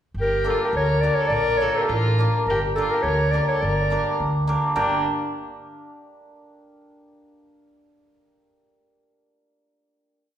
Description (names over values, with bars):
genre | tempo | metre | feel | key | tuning
balkan folk, Balkan wedding band | 104 BPM | 2/4 | swing 53% on 16ths | G minor | A4 = 440 Hz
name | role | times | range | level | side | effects
upright bass | bass | 0.1-5.0 s | G1 to D2 | -24 LUFS | equal | none
warm clarinet | melody | 0.2-5.0 s | A4 to G5 | -23 LUFS | equal | none
dark violin | second line | 0.2-5.0 s | D4 to Bb4 | -28 LUFS | left 2 dB | none
hammered dulcimer | accompaniment | 0.4-5.0 s | Bb3 to Bb4 | -26 LUFS | right 1 dB | none
room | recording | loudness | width
wet recital hall reverb, RT60 1.5 s | recorded in a church or concert hall | -19 LUFS | side -10 dB against mid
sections
0.2-4.8 A section; 4.8-5.9 final chord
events
none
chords
0.2 Gm; 1.3 Bb; 2.5 Gm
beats
| 0.16 0.74 | 1.31 1.89 | 2.47 3.04 | 3.62 4.19 | 4.76